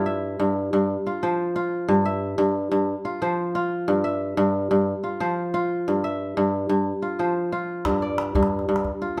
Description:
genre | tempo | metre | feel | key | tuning
west african traditional, West African string and xylophone music | 121 BPM (dotted quarters) | 12/8 | straight | unclear | A4 = 440 Hz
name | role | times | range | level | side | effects
kora | arpeggios | 0.0-9.2 s | G2 to E5 | -24 LUFS | equal | none
calabash | percussion | 7.8-8.9 s | none | -31 LUFS | equal | none
room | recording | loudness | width
moderate large studio reverb, RT60 1.2 s | band playing live in one room | -24 LUFS | mono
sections
0.0-7.8 A section; 7.8-9.2 A section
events
none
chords
0.0 Em/G; 0.9 F5; 1.9 Em/G; 2.9 F5; 3.9 Em/G; 4.9 F5; 5.9 Em/G; 6.9 F5; 7.8 G5

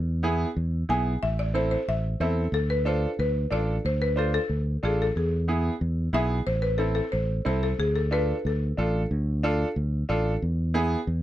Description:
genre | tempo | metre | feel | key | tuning
latin | 183 BPM | 4/4 | straight | A harmonic minor | A4 = 440 Hz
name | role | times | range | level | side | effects
fingered electric bass | bass | 0.0-11.2 s | A1 to E2 | -26 LUFS | equal | none
bright upright piano | accompaniment | 0.2-11.0 s | B3 to C5 | -28 LUFS | right 2 dB | none
buzzing marimba with medium hard mallets | melody | 0.9-8.8 s | G#4 to G#5 | -28 LUFS | left 2 dB | none
room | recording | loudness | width
little or no reverb | dry, close 1970s-style studio recording | -24 LUFS | side -13 dB against mid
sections
0.0-6.5 A section; 6.5-11.2 A section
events
none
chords
0.0 E; 1.2 Am; 2.5 Dm; 5.2 E; 6.5 Am; 7.8 Dm; 10.4 E

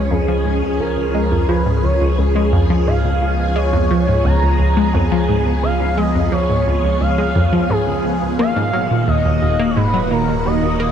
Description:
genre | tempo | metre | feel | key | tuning
ambient, sequencer-driven space music | 87 BPM | 4/4 | straight | unclear | A4 = 440 Hz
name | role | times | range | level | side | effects
pulse-width lead | melody | 0.0-10.9 s | Ab4 to Bb5 | -20 LUFS | equal | chorus, analog delay
phased string machine | sustained chords | 0.0-10.9 s | Bb2 to Ab4 | -21 LUFS | right 1 dB | ensemble chorus, phaser
analog pluck | riff | 0.0-10.9 s | Db2 to Bb3 | -18 LUFS | equal | chorus, phaser, analog delay
warm sub bass | bass | 0.0-10.9 s | Eb1 to Db2 | -21 LUFS | equal | none
room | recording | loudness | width
wet huge ambient reverb, RT60 7.9 s | none | -14 LUFS | side -8 dB against mid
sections
0.0-10.9 A section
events
none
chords
0.0 Db; 8.4 Ebm

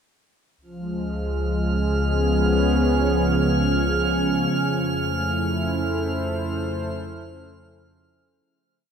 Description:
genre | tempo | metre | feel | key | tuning
ambient | 61 BPM | 4/4 | straight | unclear | A4 = 440 Hz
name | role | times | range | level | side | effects
warm analog pad | sustained chords | 0.6-8.5 s | F3 to C5 | -23 LUFS | equal | chorus
warm sub bass | bass | 0.6-8.4 s | Db2 to F2 | -27 LUFS | left 1 dB | none
organ-like drone | drone | 1.5-8.6 s | Db3 to Db4 | -28 LUFS | right 1 dB | ensemble chorus, built-in reverb
drifting glass-harmonics texture | texture | 1.1-8.5 s | F6 | -29 LUFS | right 4 dB | chorus, built-in reverb
room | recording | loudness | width
wet huge ambient reverb, RT60 7.8 s | none | -20 LUFS | side -7 dB against mid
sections
0.6-8.5 A section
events
fade-out 4.5-8.5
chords
0.6 Db7; 4.5 Fmaj7

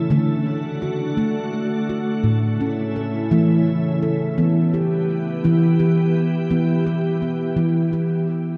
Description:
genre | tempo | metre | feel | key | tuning
world meditative, meditative tuned percussion | 56 BPM (dotted quarters) | 6/8 | straight | E dorian | A4 = 440 Hz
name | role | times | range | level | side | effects
soft additive organ-like pad | sustained chords | 0.0-8.6 s | C#3 to G4 | -27 LUFS | equal | ensemble chorus, built-in reverb, shimmer reverb
handpan | arpeggios | 0.0-8.6 s | A2 to A4 | -21 LUFS | equal | diffuse ambient delay, shimmer reverb
room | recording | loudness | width
wet lush hall reverb, RT60 1.7 s, studio reverb | dark, warm production | -20 LUFS | mono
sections
0.0-4.4 A section; 4.4-8.6 B section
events
none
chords
0.1 D; 2.2 A; 4.4 Em

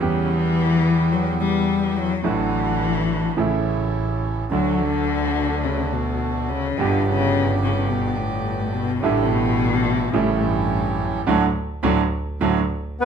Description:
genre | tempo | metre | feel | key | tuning
tango | 106 BPM | 4/4 | rubato | D major | A4 = 440 Hz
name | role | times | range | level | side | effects
dark cello | second line | 0.0-12.6 s | F#2 to G3 | -22 LUFS | left 6 dB | none
warm concert grand piano | accompaniment | 0.0-12.6 s | G1 to G4 | -23 LUFS | right 4 dB | none
bandoneon | stabs | 0.0-12.6 s | A3 to D5 | -29 LUFS | right 6 dB | none
clear double bass | bass | 0.0-12.6 s | G1 to E2 | -26 LUFS | right 2 dB | none
bandoneon | melody | 13.0-13.1 s | B3 to B4 | -16 LUFS | left 2 dB | none
room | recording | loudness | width
moderate large studio reverb, RT60 0.9 s | none | -19 LUFS | side -7 dB against mid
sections
0.0-13.1 A section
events
cello solo 0.0-13.1; band accent 11.3-13.1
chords
0.0 Em; 2.2 D/A; 3.4 A; 4.5 D; 6.8 G; 9.0 A7sus4; 10.1 A7; 11.3 D

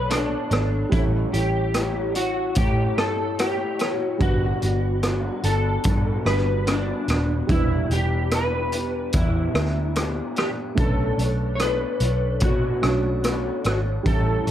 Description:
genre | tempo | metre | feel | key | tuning
indie pop, bedroom pop | 73 BPM | 4/4 | swing 60% on 16ths | B minor | A4 = 439 Hz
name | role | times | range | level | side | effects
electric slide guitar | melody | 0.0-14.5 s | D4 to C#5 | -27 LUFS | equal | ensemble chorus
dark upright piano | accompaniment | 0.0-14.5 s | G3 to C#5 | -31 LUFS | right 6 dB | cassette tape
electric guitar through a small old amp | accompaniment | 0.0-14.5 s | E3 to C#5 | -29 LUFS | left 3 dB | ensemble chorus, vibrato effect
vintage muted fingered electric bass | bass | 0.0-14.5 s | D#1 to B2 | -24 LUFS | equal | none
raw garage drum kit | drums | 0.1-14.5 s | hi-hat, kick drum, rim click | -25 LUFS | equal | none
room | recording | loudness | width
light reverb | cassette tape | -20 LUFS | side -11 dB against mid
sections
0.0-14.5 A section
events
none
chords
0.0 Bm9; 0.9 A7; 4.2 Gmaj7; 7.5 Em7; 10.8 Bm9

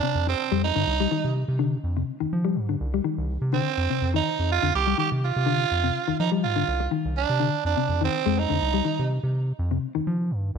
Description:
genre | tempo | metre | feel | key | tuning
afrobeat | 124 BPM | 4/4 | swing 54% on 16ths | unclear | A4 = 440 Hz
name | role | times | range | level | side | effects
raspy tenor saxophone | melody | 0.0-9.1 s | C4 to G4 | -25 LUFS | right 10 dB | none
mellow electric guitar | arpeggios | 0.0-10.1 s | C3 to Ab3 | -28 LUFS | left 9 dB | none
round analog bass | bass | 0.1-10.6 s | C2 to F3 | -26 LUFS | equal | none
room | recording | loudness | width
moderate echo chamber reverb, RT60 1.8 s, small room ambience | 1960s-style stereo with parts hard left and right | -22 LUFS | side -6 dB against mid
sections
0.0-10.6 A section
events
none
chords
0.0 Fsus2; 0.9 Cmadd9; 1.8 Fm9; 2.8 Cmadd9; 3.8 F5; 4.7 Cmadd9; 5.7 Fm9; 6.7 Cmadd9; 7.6 Fm7; 8.6 Cm; 9.6 Fsus2

